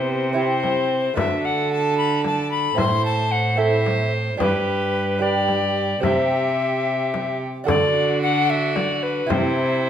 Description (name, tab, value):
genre	classical, renaissance-style consort dance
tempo	74 BPM (dotted quarters)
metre	6/8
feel	straight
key	D mixolydian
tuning	A4 = 440 Hz
part	bright alto recorder	melody	0.0-9.9 s	B4 to C6	-23 LUFS	left 4 dB	none
part	rich violin	second line	0.0-9.9 s	B3 to C5	-27 LUFS	right 5 dB	none
part	lute	accompaniment	0.0-9.9 s	G2 to C5	-25 LUFS	right 4 dB	none
part	rich cello	bass	0.0-9.9 s	G2 to D3	-25 LUFS	right 1 dB	none
part	frame drum	percussion	0.6-9.6 s	none	-27 LUFS	left 4 dB	none
room	wet stone room reverb, RT60 1.3 s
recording	none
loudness	-18 LUFS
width	side -9 dB against mid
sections	0.0-7.7 A section; 7.7-9.9 A section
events	none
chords	0.0 C; 1.2 D; 2.8 Am; 4.4 G; 6.0 C; 7.7 D; 9.3 C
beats	0.37 | 1.17 1.98 | 2.78 3.59 | 4.40 5.21 | 6.03 6.86 | 7.68 8.49 | 9.30